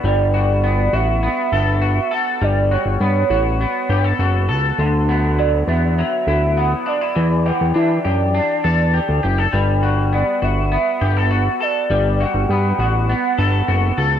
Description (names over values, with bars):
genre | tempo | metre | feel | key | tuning
indie pop, bedroom pop | 101 BPM | 4/4 | straight | G lydian | A4 = 442 Hz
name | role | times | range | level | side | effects
electric guitar through a small old amp | accompaniment | 0.0-14.2 s | D3 to A4 | -20 LUFS | left 3 dB | analog chorus, vibrato effect
fat analog bass | bass | 0.0-14.2 s | F#1 to E3 | -17 LUFS | equal | none
warbly nostalgic lead | melody | 0.1-14.0 s | C#5 to G5 | -22 LUFS | right 4 dB | phaser, analog chorus
room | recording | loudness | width
digital ambience | none | -15 LUFS | side -9 dB against mid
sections
0.0-14.2 A section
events
none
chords
0.0 Gmaj9; 4.8 D69; 7.2 Em11; 9.5 Gmaj9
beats
| 0.04 0.63 1.23 1.82 | 2.41 3.01 3.60 4.19 | 4.79 5.38 5.97 6.57 | 7.16 7.75 8.34 8.94 | 9.53 10.12 10.72 11.31 | 11.90 12.49 13.09 13.68